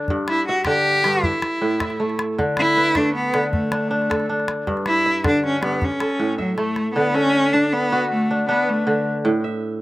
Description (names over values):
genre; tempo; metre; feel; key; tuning
west african traditional, West African string and xylophone music; 105 BPM (dotted quarters); 12/8; straight; D major; A4 = 440 Hz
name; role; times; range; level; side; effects
kora; arpeggios; 0.0-9.8 s; G2 to E5; -22 LUFS; equal; slapback echo
calabash; percussion; 0.1-6.9 s; none; -26 LUFS; left 1 dB; none
clear cello; melody; 0.3-9.1 s; F#3 to G4; -20 LUFS; equal; slapback echo
room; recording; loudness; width
little or no reverb; recorded outdoors, with no room sound; -18 LUFS; side -18 dB against mid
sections
0.0-7.0 A section; 7.0-9.8 B section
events
drum fill 6.4-7.0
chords
0.1 G5; 1.2 A5; 2.4 D5; 4.7 G5; 5.8 A; 7.0 D; 9.2 A5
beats
| 0.09 0.67 1.24 1.81 | 2.38 2.96 3.53 4.10 | 4.67 5.24 5.82 6.39 | 6.96 7.53 8.10 8.67 | 9.24 9.81